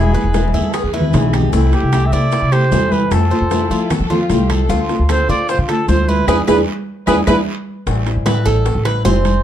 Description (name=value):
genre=latin, Cuban son and guajira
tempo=152 BPM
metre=4/4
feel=straight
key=A minor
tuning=A4 = 439 Hz
part: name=breathy trumpet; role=melody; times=0.0-7.4 s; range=G4 to E5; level=-20 LUFS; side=right 1 dB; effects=plate reverb
part: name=nylon-string guitar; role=accompaniment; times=0.0-9.4 s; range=B2 to F4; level=-21 LUFS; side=left 2 dB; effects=none
part: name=Cuban tres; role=arpeggios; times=0.0-9.4 s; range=E4 to C5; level=-21 LUFS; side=right 2 dB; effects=none
part: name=upright bass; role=bass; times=0.0-9.4 s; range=E1 to F3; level=-17 LUFS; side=equal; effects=none
part: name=bongos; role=percussion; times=0.1-9.4 s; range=none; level=-26 LUFS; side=left 7 dB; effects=none
part: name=maracas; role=percussion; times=0.1-9.4 s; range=none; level=-38 LUFS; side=left 6 dB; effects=none
part: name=congas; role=percussion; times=0.2-9.4 s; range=none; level=-21 LUFS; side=right 1 dB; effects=none
part: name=dark symphonic violin section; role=second line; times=0.3-7.4 s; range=E4 to B4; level=-25 LUFS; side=left 1 dB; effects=none
part: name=guiro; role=percussion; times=0.3-9.4 s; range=none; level=-35 LUFS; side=right 4 dB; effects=none
part: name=timbales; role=percussion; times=0.3-9.4 s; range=none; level=-28 LUFS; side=right 6 dB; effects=none
part: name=claves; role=percussion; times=0.7-9.1 s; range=none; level=-32 LUFS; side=left 5 dB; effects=none
room=light reverb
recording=dark, warm production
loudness=-13 LUFS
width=side -10 dB against mid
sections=0.0-7.9 A section; 7.9-9.4 B section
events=drum fill 0.3-1.5, 6.3-7.9; band accent 6.3-7.9; Cuban tres solo 7.9-9.4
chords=0.0 E; 1.5 C6; 3.1 Fmaj7; 4.7 Dm7; 6.3 E7; 7.9 Am7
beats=0.35 0.74 1.14 | 1.53 1.93 2.33 2.72 | 3.12 3.51 3.91 4.30 | 4.70 5.09 5.49 5.89 | 6.28 6.68 7.08 7.47 | 7.87 8.26 8.66 9.05